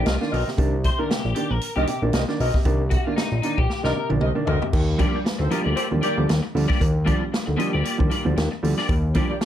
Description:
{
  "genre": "funk",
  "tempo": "116 BPM",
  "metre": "4/4",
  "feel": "swing 56% on 16ths",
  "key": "unclear",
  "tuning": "A4 = 439 Hz",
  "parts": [
    { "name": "electric guitar at the edge of break-up", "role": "accompaniment", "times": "0.0-9.4 s", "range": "Bb3 to Eb5", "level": "-28 LUFS", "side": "left 3 dB", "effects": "ensemble chorus" },
    { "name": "clear upright piano", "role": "stabs", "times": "0.0-9.4 s", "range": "C3 to D4", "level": "-26 LUFS", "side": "right 2 dB", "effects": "none" },
    { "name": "fat analog bass", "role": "bass", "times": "0.0-9.2 s", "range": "Bb1 to Eb2", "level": "-23 LUFS", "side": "equal", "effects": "none" },
    { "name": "mellow horn section", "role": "second line", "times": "0.1-9.4 s", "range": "G3 to Eb5", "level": "-28 LUFS", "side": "left 1 dB", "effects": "none" },
    { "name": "swinging big-band drum kit", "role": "drums", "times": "0.1-9.4 s", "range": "crash cymbal, hi-hat, kick drum, snare drum, toms", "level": "-24 LUFS", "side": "equal", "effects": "none" }
  ],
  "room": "moderate club reverb, RT60 0.6 s",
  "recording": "dark, warm production",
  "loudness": "-20 LUFS",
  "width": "side -11 dB against mid",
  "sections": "0.0-4.7 A section; 4.7-9.4 B section",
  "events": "clean electric guitar solo 0.0-4.7; drum fill 3.7-4.7",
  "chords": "0.0 Cm7; 4.7 Ebmaj9",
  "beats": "0.06 | 0.58 1.10 1.62 2.14 | 2.66 3.18 3.70 4.22 | 4.74 5.26 5.78 6.30 | 6.82 7.34 7.86 8.38 | 8.90 9.42"
}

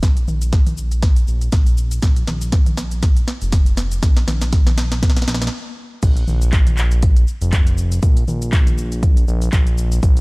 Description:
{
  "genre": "afro house",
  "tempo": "120 BPM",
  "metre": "4/4",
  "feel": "swing 56% on 16ths",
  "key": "unclear",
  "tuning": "A4 = 442 Hz",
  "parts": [
    { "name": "smooth synth bass", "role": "bass", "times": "0.0-10.2 s", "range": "F1 to Bb1", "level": "-20 LUFS", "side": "equal", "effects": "sidechain pumping" },
    { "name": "afro-pop drum kit", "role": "drums", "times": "0.0-10.2 s", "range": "cabasa, crash cymbal, handclaps, hi-hat, snare drum, toms", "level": "-25 LUFS", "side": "equal", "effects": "studio reverb" },
    { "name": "electronic kick drum", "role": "drums", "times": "0.0-10.1 s", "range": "none", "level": "-15 LUFS", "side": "equal", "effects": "studio reverb" }
  ],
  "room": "digital ambience",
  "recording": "dry, gritty hardware recording",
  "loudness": "-14 LUFS",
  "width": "side -28 dB against mid",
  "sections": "0.0-6.0 A section; 6.0-10.2 B section",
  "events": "build-up 0.0-6.0; drum fill 0.0-5.5; stop 5.5-6.0; drop 6.0-10.2",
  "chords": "none",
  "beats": "| 0.03 0.53 1.03 1.53 | 2.03 2.53 3.03 3.53 | 4.03 4.53 5.03 5.53 | 6.03 6.53 7.03 7.53 | 8.03 8.53 9.03 9.53 | 10.03"
}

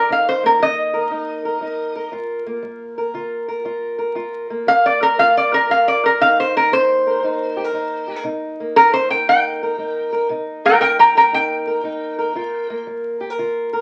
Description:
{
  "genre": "acoustic country blues, solo or duo",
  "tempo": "117 BPM",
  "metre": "4/4",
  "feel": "swing 67% on 8ths",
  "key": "unclear",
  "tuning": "A4 = 440 Hz",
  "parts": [
    { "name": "lap resonator guitar", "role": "melody", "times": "0.0-12.8 s", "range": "Bb4 to Bb5", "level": "-16 LUFS", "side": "equal", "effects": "none" },
    { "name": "fingerpicked old ladder-braced acoustic guitar", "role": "accompaniment", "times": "0.0-13.8 s", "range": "G2 to Bb4", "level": "-25 LUFS", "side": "equal", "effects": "none" }
  ],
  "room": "moderate studio reverb, RT60 0.7 s",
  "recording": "very old 78 rpm record, vinyl crackle, nothing above 10.6 kHz",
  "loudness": "-18 LUFS",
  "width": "mono",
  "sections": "0.0-13.8 A section",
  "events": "resonator guitar played with a steel bar solo 0.0-13.8",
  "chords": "0.1 Cm7; 2.1 Gm7; 6.2 Cm7; 12.3 Gm7",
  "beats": "| 0.08 0.59 1.10 1.61 | 2.12 2.63 3.14 3.65 | 4.16 4.67 5.18 5.69 | 6.20 6.71 7.22 7.74 | 8.25 8.76 9.27 9.78 | 10.29 10.81 11.32 11.83 | 12.34 12.86 13.37"
}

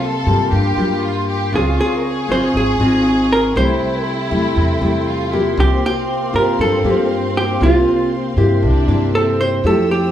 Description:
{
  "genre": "bossa nova",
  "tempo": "118 BPM",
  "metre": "4/4",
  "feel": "straight",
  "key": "unclear",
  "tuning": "A4 = 442 Hz",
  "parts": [
    { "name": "warm studio violin section", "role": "second line", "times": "0.0-10.1 s", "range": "C4 to Bb4", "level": "-23 LUFS", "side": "equal", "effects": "none" },
    { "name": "nylon-string guitar", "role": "accompaniment", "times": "0.0-10.1 s", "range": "G2 to G4", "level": "-18 LUFS", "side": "left 1 dB", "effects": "none" },
    { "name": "warm studio string section", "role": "sustained chords", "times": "0.0-10.1 s", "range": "Bb3 to E6", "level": "-29 LUFS", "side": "equal", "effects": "none" },
    { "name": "upright bass", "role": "bass", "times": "0.3-10.1 s", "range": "Ab1 to G2", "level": "-20 LUFS", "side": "equal", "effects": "none" },
    { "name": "vintage hollow-body jazz guitar", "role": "melody", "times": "1.6-10.1 s", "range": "F4 to C5", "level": "-18 LUFS", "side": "right 2 dB", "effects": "none" }
  ],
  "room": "wet large studio reverb, RT60 0.8 s",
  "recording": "band playing live in one room",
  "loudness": "-14 LUFS",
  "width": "side -11 dB against mid",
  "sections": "0.0-9.6 A section",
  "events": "none",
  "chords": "0.0 C7sus4; 1.5 Dbmaj7; 3.6 Am7/C; 5.6 C7sus4; 8.6 C7",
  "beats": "0.01 0.52 1.02 | 1.53 2.03 2.54 3.05 | 3.55 4.06 4.57 5.07 | 5.58 6.09 6.59 7.10 | 7.61 8.12 8.62 9.13 | 9.64"
}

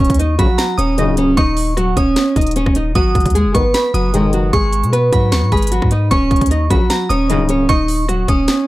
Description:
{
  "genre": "hip hop, trap",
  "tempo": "152 BPM",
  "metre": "4/4",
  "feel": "half-time",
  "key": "unclear",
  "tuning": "A4 = 436 Hz",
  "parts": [
    { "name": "nylon-string guitar", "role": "melody", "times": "0.0-8.7 s", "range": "F#3 to D#5", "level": "-16 LUFS", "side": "right 1 dB", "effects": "low-pass filter" },
    { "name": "glassy synth bell", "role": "second line", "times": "0.0-8.7 s", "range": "A#5 to D#6", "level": "-22 LUFS", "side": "right 1 dB", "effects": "chorus, analog delay" },
    { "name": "long sustained 808-style bass", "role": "bass", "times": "0.0-8.5 s", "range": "C#1 to B2", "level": "-18 LUFS", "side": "equal", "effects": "none" },
    { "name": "trap drum kit", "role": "drums", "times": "0.0-8.6 s", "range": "hi-hat, kick drum, rim click, snare drum", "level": "-18 LUFS", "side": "equal", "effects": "none" },
    { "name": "warm brass ensemble", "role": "stabs", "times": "0.4-7.7 s", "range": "A#1 to D#3", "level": "-19 LUFS", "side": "left 3 dB", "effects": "none" }
  ],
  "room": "little or no reverb",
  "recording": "dry, gritty hardware recording",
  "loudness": "-12 LUFS",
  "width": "side -17 dB against mid",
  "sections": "0.0-8.7 A section",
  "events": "none",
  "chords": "0.0 D#m7; 3.0 G#m7; 6.1 D#m7",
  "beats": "0.19 0.58 0.98 | 1.37 1.77 2.16 2.56 | 2.95 3.35 3.74 4.14 | 4.53 4.93 5.32 5.72 | 6.11 6.51 6.90 7.29 | 7.69 8.09 8.48"
}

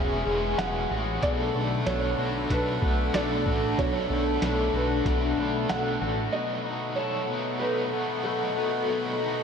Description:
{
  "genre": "dream pop",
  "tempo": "94 BPM",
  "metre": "4/4",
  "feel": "straight",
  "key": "unclear",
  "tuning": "A4 = 439 Hz",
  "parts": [
    { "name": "overdriven electric guitar", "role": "accompaniment", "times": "0.0-9.4 s", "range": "B2 to A4", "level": "-32 LUFS", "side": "right 2 dB", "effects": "tremolo, wide subtle chorus, shimmer reverb" },
    { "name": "phased analog pad", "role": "sustained chords", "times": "0.0-9.4 s", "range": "D4 to C#6", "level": "-30 LUFS", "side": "left 2 dB", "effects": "phaser, chorus, shimmer reverb" },
    { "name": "electric guitar at the edge of break-up", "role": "arpeggios", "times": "0.0-9.4 s", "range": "B2 to A4", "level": "-33 LUFS", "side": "left 4 dB", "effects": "wide subtle chorus, ping-pong delay, shimmer reverb" },
    { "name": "chorused synth bass", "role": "bass", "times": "0.0-6.3 s", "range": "E1 to B1", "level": "-31 LUFS", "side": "equal", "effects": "none" },
    { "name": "felt-muted upright piano", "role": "melody", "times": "0.6-8.7 s", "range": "A4 to F#5", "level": "-32 LUFS", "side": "right 2 dB", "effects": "ping-pong delay, shimmer reverb" },
    { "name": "lo-fi sampler-style drum kit", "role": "drums", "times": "0.6-5.8 s", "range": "hi-hat, kick drum, snare drum", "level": "-30 LUFS", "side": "equal", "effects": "none" }
  ],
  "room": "wet lush hall reverb, RT60 1.7 s",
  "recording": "dreamy mix soaked in reverb",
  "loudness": "-24 LUFS",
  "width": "side -6 dB against mid",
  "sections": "0.0-6.3 A section; 6.3-9.4 B section",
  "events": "none",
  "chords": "0.0 E69; 1.2 Bm7; 6.3 B7",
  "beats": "0.59 | 1.23 1.87 2.50 3.14 | 3.78 4.42 5.06 5.70 | 6.33 6.97 7.61 8.25 | 8.89"
}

